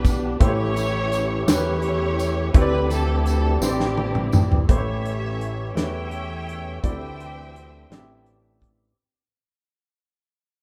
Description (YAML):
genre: slow gospel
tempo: 56 BPM (dotted quarters)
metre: 6/8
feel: straight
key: unclear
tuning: A4 = 438 Hz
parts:
  - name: warm studio string section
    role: melody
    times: 0.0-8.2 s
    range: C4 to G5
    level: -30 LUFS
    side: equal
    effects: none
  - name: warm upright piano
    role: accompaniment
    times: 0.0-9.0 s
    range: A2 to E5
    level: -32 LUFS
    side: equal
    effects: none
  - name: tonewheel organ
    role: sustained chords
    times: 0.0-9.0 s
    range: E3 to G4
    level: -33 LUFS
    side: equal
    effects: slow rotary speaker, overdrive, chorus vibrato
  - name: fat analog bass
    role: bass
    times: 0.0-8.9 s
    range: A1 to E2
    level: -28 LUFS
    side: equal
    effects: none
  - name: modern studio drum kit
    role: drums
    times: 0.0-8.8 s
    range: hi-hat, kick drum, snare drum, toms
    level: -22 LUFS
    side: equal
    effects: none
  - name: tambourine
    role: percussion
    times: 0.1-4.7 s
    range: none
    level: -40 LUFS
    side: equal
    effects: none
room: moderate stone room reverb, RT60 1.3 s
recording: band playing live in one room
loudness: -22 LUFS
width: mono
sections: 0.0-4.7 A section; 4.7-9.0 B section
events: drum fill 3.6-4.7; fade-out 4.7-9.0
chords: 0.4 A7; 2.5 D9sus4; 4.7 A7; 6.8 D9sus4